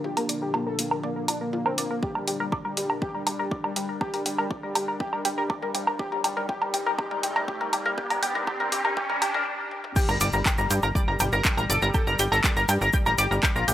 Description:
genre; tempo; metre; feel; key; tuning
melodic techno; 121 BPM; 4/4; straight; G minor; A4 = 444 Hz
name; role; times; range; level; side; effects
soft supersaw; melody; 0.0-13.7 s; G3 to Bb4; -32 LUFS; equal; sidechain pumping, low-pass filter, analog delay
evolving wavetable pad; sustained chords; 0.0-9.5 s; Bb2 to Eb4; -37 LUFS; left 1 dB; chorus, built-in reverb, vintage 12-bit sampler grit, sidechain pumping
tight sequenced synth; arpeggios; 0.0-13.7 s; F4 to D6; -28 LUFS; left 1 dB; chorus, phaser, sidechain pumping, analog delay
house drum kit; drums; 0.0-13.7 s; crash cymbal, handclaps, hi-hat, toms, woodblock; -28 LUFS; right 1 dB; high-pass filter on toms, studio reverb, high-pass filter on perc, high-pass filter on hats, high-pass filter on cymbals, high-pass filter on snare
electronic kick drum; drums; 2.0-13.5 s; none; -27 LUFS; equal; studio reverb
riser and impact; sound effects; 4.9-11.9 s; none; -35 LUFS; equal; none
egg shaker; percussion; 10.0-13.7 s; none; -34 LUFS; left 2 dB; none
tight sequencer bass; bass; 10.1-13.7 s; G1 to G2; -26 LUFS; equal; sidechain pumping
room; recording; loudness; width
light reverb; dry, gritty hardware recording, high-pass filter; -23 LUFS; side -12 dB against mid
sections
0.0-10.0 A section; 10.0-13.7 B section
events
build-up 0.0-10.0; drum fill 0.0-9.5, 9.7; filter sweep on synth arpeggio sound 0.0-10.0; filter sweep on supersaw synth 0.0-10.0; filter sweep on ambient pad 0.0-10.0; riser 4.9-9.5; stop 9.5-10.0; drop 10.0-13.7; impact 10.0-11.9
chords
0.0 Bb; 2.0 Gm; 6.0 Cm; 10.0 Gm

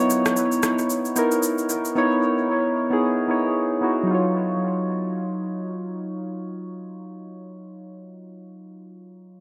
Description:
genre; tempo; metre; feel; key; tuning
amapiano; 113 BPM; 4/4; swing 58% on 16ths; unclear; A4 = 440 Hz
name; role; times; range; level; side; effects
soft electric-piano-like synth keys; accompaniment; 0.0-9.4 s; Gb3 to Db5; -24 LUFS; equal; chorus, low-pass filter, analog delay
electronic shaker and rim click; drums; 0.1-2.0 s; none; -30 LUFS; equal; analog delay
room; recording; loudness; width
moderate spring reverb, RT60 1.8 s; echo-heavy mix; -23 LUFS; mono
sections
0.0-4.1 A section; 4.1-8.3 B section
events
none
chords
0.0 Dbm9; 4.1 Ebm9

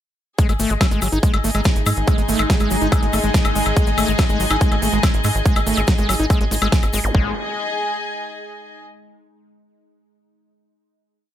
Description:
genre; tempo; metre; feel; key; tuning
psychedelic trance; 142 BPM; 4/4; straight; unclear; A4 = 442 Hz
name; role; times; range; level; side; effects
evolving wavetable pad; sustained chords; 1.2-7.2 s; G#3 to D#4; -28 LUFS; equal; phaser, built-in reverb, sidechain pumping
screaming distorted acid line; riff; 0.4-7.3 s; F#3 to D#4; -24 LUFS; moving between left 6 dB and right 6 dB; distortion, chorus, auto-pan, cassette tape, sidechain pumping, tape echo
big-room dance drum kit; drums; 0.4-7.1 s; hi-hat, snare drum, woodblock; -24 LUFS; left 2 dB; small room ambience
electronic kick drum; drums; 0.4-7.2 s; none; -18 LUFS; equal; small room ambience
egg shaker; percussion; 0.4-7.1 s; none; -32 LUFS; left 4 dB; none
warm studio string section; texture; 0.4-8.8 s; G#4 to G#5; -25 LUFS; left 2 dB; sidechain pumping
tight sequencer bass; bass; 0.5-7.3 s; G#1 to G#2; -22 LUFS; equal; none
zap; sound effects; 7.0-7.1 s; none; -30 LUFS; equal; none
room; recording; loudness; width
little or no reverb; none; -16 LUFS; side -11 dB against mid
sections
0.4-7.1 drop; 7.1-8.8 final chord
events
drop 0.4-7.1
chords
0.4 G#5

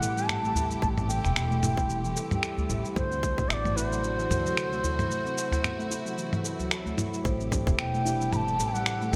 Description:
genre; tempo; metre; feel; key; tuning
organic downtempo; 112 BPM; 4/4; swing 56% on 16ths; A dorian; A4 = 439 Hz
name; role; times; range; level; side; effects
bansuri; melody; 0.0-9.2 s; C5 to B5; -34 LUFS; equal; vintage 12-bit sampler grit, delay
warm studio string section; sustained chords; 0.0-9.2 s; C3 to G4; -40 LUFS; equal; sidechain pumping
handpan; arpeggios; 0.0-9.2 s; E3 to A4; -36 LUFS; equal; delay
upright bass; bass; 0.0-9.2 s; E1 to D2; -34 LUFS; equal; sidechain pumping
dusty soul sampler-style drum kit; drums; 0.0-9.2 s; finger snaps, shaker, toms; -34 LUFS; equal; overdrive, studio reverb
quartz singing bowl; texture; 0.0-9.2 s; C5 to C6; -47 LUFS; equal; none
udu; percussion; 0.6-9.2 s; none; -36 LUFS; equal; none
electronic kick drum; drums; 0.8-3.5, 7.2-7.8 s; none; -31 LUFS; equal; overdrive, studio reverb
felt-muted upright piano; accompaniment; 7.5-9.2 s; E3 to G4; -40 LUFS; equal; analog chorus, sidechain pumping, delay
room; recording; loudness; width
moderate plate reverb, RT60 2.8 s; bright 1980s-style digital production; -28 LUFS; mono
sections
0.0-7.2 A section; 7.2-9.2 B section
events
none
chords
0.0 Am7; 3.0 D7; 7.2 Am7

